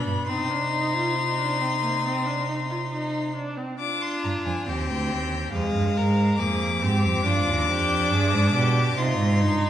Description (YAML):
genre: classical, baroque-style fugue for string quartet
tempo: 70 BPM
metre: 4/4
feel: straight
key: C minor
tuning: A4 = 436 Hz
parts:
  - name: warm violin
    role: melody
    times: 0.0-9.7 s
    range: F5 to D6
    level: -27 LUFS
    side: left 7 dB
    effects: none
  - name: clear violin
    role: second line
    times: 0.0-9.7 s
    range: D4 to Bb4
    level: -30 LUFS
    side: left 1 dB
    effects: none
  - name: clear viola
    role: accompaniment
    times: 0.0-9.7 s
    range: Ab3 to F4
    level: -28 LUFS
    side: right 1 dB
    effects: none
  - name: rich cello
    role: bass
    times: 0.0-9.7 s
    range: D2 to C3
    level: -25 LUFS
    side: right 2 dB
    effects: none
room: wet recital hall reverb, RT60 1.6 s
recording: heard from further back in the room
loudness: -22 LUFS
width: side -11 dB against mid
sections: 0.0-3.8 A section; 3.8-9.7 B section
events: none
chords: 0.3 Cm; 5.5 Ddim/F; 7.2 G7; 9.0 Cm